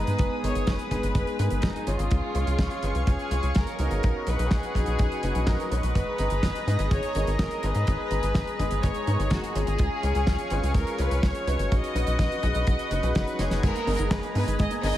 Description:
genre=italo disco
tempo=125 BPM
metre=4/4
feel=straight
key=G# dorian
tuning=A4 = 439 Hz
part: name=rich chamber violin section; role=melody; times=0.0-15.0 s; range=D#4 to D#5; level=-32 LUFS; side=left 1 dB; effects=tape echo
part: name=lush unison pad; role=sustained chords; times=0.0-15.0 s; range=B3 to D#6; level=-32 LUFS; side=left 1 dB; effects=chorus
part: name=clear baby grand piano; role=stabs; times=0.0-15.0 s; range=F#3 to A#5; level=-33 LUFS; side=equal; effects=lush chorus
part: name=tight sequencer bass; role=bass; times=0.0-15.0 s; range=F#1 to G#2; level=-27 LUFS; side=equal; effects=none
part: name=damped 70s drum kit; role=drums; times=0.1-14.9 s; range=crash cymbal, handclaps, hi-hat, snare drum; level=-33 LUFS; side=equal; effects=studio reverb
part: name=kick drum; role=drums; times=0.2-14.7 s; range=none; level=-26 LUFS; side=equal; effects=studio reverb
part: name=analog pluck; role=arpeggios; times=13.6-15.0 s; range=G#3 to D#4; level=-34 LUFS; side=right 2 dB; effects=chorus, tape echo
room=moderate plate reverb, RT60 2.3 s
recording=dreamy mix soaked in reverb, vinyl crackle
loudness=-23 LUFS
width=side -13 dB against mid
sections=0.0-13.6 A section; 13.6-15.0 B section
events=drum fill 13.4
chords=0.0 G#madd9; 2.1 C#; 4.0 Badd9; 6.0 G#madd9; 9.8 C#; 11.7 Badd9; 13.6 G#madd9

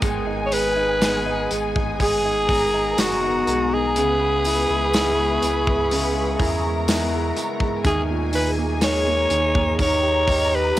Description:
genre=pop ballad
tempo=62 BPM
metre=4/4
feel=straight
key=G# minor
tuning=A4 = 440 Hz
part: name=rich studio violin section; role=second line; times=0.0-10.8 s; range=G4 to B5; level=-30 LUFS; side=left 1 dB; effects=cassette tape, plate reverb
part: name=warm baby grand piano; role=accompaniment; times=0.0-10.8 s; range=A#2 to G4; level=-27 LUFS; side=right 5 dB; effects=cassette tape
part: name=glassy FM pad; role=sustained chords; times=0.0-10.8 s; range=B3 to D#6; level=-30 LUFS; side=left 3 dB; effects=ensemble chorus, built-in reverb, cassette tape, plate reverb
part: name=electric guitar at the edge of break-up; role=arpeggios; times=0.0-10.8 s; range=G#2 to A#4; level=-32 LUFS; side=left 8 dB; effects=spring reverb, cassette tape, plate reverb
part: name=sub bass with octave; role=bass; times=0.0-10.8 s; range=F#1 to E2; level=-28 LUFS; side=equal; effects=none
part: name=modern studio drum kit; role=drums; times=0.0-10.8 s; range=hi-hat, kick drum, snare drum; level=-25 LUFS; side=equal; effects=cassette tape
part: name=tambourine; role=percussion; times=0.0-10.8 s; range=none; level=-36 LUFS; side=right 7 dB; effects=none
part: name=raspy alto saxophone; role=melody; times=0.5-10.8 s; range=F#4 to C#5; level=-21 LUFS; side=equal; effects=cassette tape
room=light reverb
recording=home recording on cassette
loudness=-18 LUFS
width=side -14 dB against mid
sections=0.0-10.8 A section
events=none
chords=0.0 G#m; 4.0 C#m7; 7.8 D#sus4; 9.8 D#

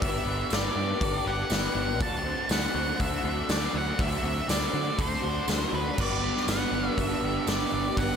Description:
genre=rock, shoegaze and dream pop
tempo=121 BPM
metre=4/4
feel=straight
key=G major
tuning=A4 = 440 Hz
part: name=octave-fuzz lead guitar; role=melody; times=0.0-8.2 s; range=B4 to A5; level=-31 LUFS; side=right 2 dB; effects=distortion, diffuse ambient delay
part: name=direct-recorded clean electric guitar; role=arpeggios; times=0.0-8.2 s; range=F#3 to A4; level=-38 LUFS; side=right 9 dB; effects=ensemble chorus, diffuse ambient delay
part: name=raw garage guitar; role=riff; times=0.0-8.2 s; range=D3 to C5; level=-32 LUFS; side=left 7 dB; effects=overdrive, lush chorus
part: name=picked electric bass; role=bass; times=0.0-8.1 s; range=G1 to D3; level=-32 LUFS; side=equal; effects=none
part: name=huge arena drum kit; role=drums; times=0.0-8.1 s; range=crash cymbal, hi-hat, kick drum, snare drum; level=-30 LUFS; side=equal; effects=none
part: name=tambourine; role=percussion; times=0.5-7.6 s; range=none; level=-40 LUFS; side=right 15 dB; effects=none
part: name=crunchy overdriven guitar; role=riff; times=6.0-8.2 s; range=G3 to B4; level=-32 LUFS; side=right 12 dB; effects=reverse reverb
room=moderate huge ambient reverb, RT60 4.7 s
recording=dreamy mix soaked in reverb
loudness=-25 LUFS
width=side -7 dB against mid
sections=0.0-8.2 A section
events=none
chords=0.0 Gmaj9; 2.0 D7; 6.0 Gmaj9

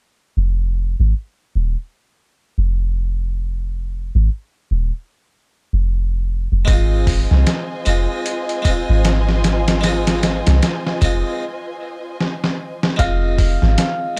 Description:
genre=trip hop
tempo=76 BPM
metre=4/4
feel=swing 59% on 16ths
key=unclear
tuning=A4 = 439 Hz
part: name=soft 808-style bass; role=bass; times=0.4-13.8 s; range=Eb1 to C2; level=-19 LUFS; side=equal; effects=tube saturation
part: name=harpsichord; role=accompaniment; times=6.6-14.2 s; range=Ab3 to F4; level=-26 LUFS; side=equal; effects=tremolo, low-pass filter, tape echo
part: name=warm studio string section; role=sustained chords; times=6.7-13.0 s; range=F4 to Ab5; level=-30 LUFS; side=equal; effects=vintage 12-bit sampler grit
part: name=dusty soul sampler-style drum kit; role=drums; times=6.7-14.2 s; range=hi-hat, kick drum, snare drum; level=-21 LUFS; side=equal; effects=overdrive
part: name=santur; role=melody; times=13.0-14.2 s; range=F5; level=-26 LUFS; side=equal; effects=none
room=studio reverb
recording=none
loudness=-19 LUFS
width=mono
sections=0.4-13.0 A section; 13.0-14.2 B section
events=break 11.4-13.0; drum fill 12.2-13.0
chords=0.4 N.C.; 6.7 Ab6

